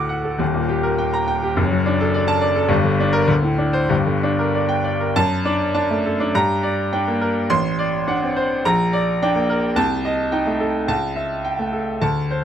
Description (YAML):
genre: classical, virtuoso piano study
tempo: 94-109 BPM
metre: 2/4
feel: rubato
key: G minor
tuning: A4 = 439 Hz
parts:
  - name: bright grand piano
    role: solo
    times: 0.0-12.4 s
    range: Eb1 to D6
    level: -17 LUFS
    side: equal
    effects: none
room: light reverb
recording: close, detailed microphones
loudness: -17 LUFS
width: side -9 dB against mid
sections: 0.0-5.1 A section; 5.1-12.4 B section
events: none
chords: 0.4 Eb; 1.6 D/F#; 2.7 Gm; 3.3 D5; 3.9 Gm; 5.1 D/F#; 6.3 Gm; 7.5 D7/A; 8.6 Gm/Bb; 9.7 Am7b5/C; 10.9 A7/C#